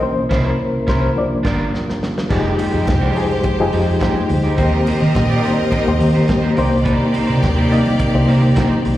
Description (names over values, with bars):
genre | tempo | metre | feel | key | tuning
disco | 105 BPM | 4/4 | straight | C minor | A4 = 440 Hz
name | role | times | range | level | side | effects
mellow reed electric piano | accompaniment | 0.0-9.0 s | C3 to Eb5 | -18 LUFS | left 2 dB | fast tremolo, slapback echo
mellow tonewheel organ | sustained chords | 0.0-9.0 s | Db3 to G5 | -25 LUFS | right 1 dB | slow rotary speaker
hollow-body short-scale fingered electric bass | bass | 0.0-9.0 s | F1 to Eb3 | -18 LUFS | right 1 dB | none
electric guitar at the edge of break-up | accompaniment | 0.3-8.9 s | Ab3 to D5 | -26 LUFS | right 5 dB | vibrato effect, slapback echo
warm soul drum kit | drums | 0.3-9.0 s | crash cymbal, hi-hat, kick drum, snare drum | -22 LUFS | equal | none
clear studio string section | second line | 2.3-9.0 s | Ab3 to Eb5 | -24 LUFS | equal | slapback echo
congas | percussion | 2.3-8.8 s | none | -27 LUFS | left 4 dB | none
room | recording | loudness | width
studio reverb | live gig heard through the venue's PA, recital hall reverb | -14 LUFS | side -14 dB against mid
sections
0.0-2.3 A section; 2.3-9.0 B section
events
reed electric piano solo 0.0-2.3; band accent 0.0-2.3; drum fill 1.7-2.3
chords
0.0 C7b9; 1.2 Gm7; 2.3 Fm9; 4.6 Eb6; 6.6 Cm7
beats
| 0.03 0.60 1.17 1.74 | 2.31 2.88 3.45 4.02 | 4.58 5.15 5.72 6.29 | 6.86 7.43 8.00 8.57